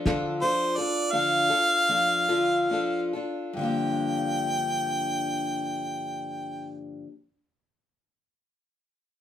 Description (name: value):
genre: acoustic folk duo or small band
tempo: 44-58 BPM (dotted quarters)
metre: 6/8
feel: straight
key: G minor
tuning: A4 = 439 Hz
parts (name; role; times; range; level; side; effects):
- picked steel-string acoustic guitar; accompaniment; 0.0-7.2 s; G2 to A4; -28 LUFS; left 2 dB; none
- cloth-damped thuddy drum kit; drums; 0.1-0.9 s; hi-hat, kick drum, snare drum; -27 LUFS; equal; none
- clear harmonica; melody; 0.4-6.8 s; C5 to G5; -25 LUFS; equal; none
room: moderate studio reverb, RT60 0.6 s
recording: minimal, uncompressed stereo recording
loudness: -24 LUFS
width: side -10 dB against mid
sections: 0.0-3.6 A section; 3.6-9.0 B section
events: slowing down 0.0-3.6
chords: 0.0 Dm; 3.6 Gm7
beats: 0.07 | 1.14 2.29 | 3.56 4.92 | 6.27